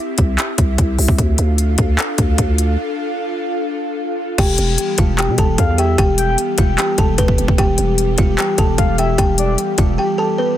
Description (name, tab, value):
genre	hip hop, trap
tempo	150 BPM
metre	4/4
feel	half-time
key	E phrygian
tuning	A4 = 440 Hz
part	airy breathy pad	sustained chords	0.0-10.6 s	E3 to F5	-23 LUFS	right 1 dB	chorus
part	growling 808-style bass	bass	0.2-10.0 s	E1 to B2	-17 LUFS	equal	none
part	trap drum kit	drums	0.2-9.9 s	crash cymbal, handclaps, hi-hat, kick drum	-17 LUFS	equal	none
part	buzzing kalimba	melody	4.4-10.6 s	B3 to A5	-19 LUFS	left 1 dB	low-pass filter, ping-pong delay
part	soft octave-layered synth lead	second line	5.6-6.4, 8.8-9.6 s	D5 to G5	-25 LUFS	left 3 dB	chorus, ping-pong delay
room	little or no reverb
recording	dense, heavily limited modern master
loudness	-14 LUFS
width	side -12 dB against mid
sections	0.0-4.4 A section; 4.4-10.6 B section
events	break 2.8-4.4; silent gap 10.0-10.6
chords	0.0 C; 1.2 Dm; 4.4 Em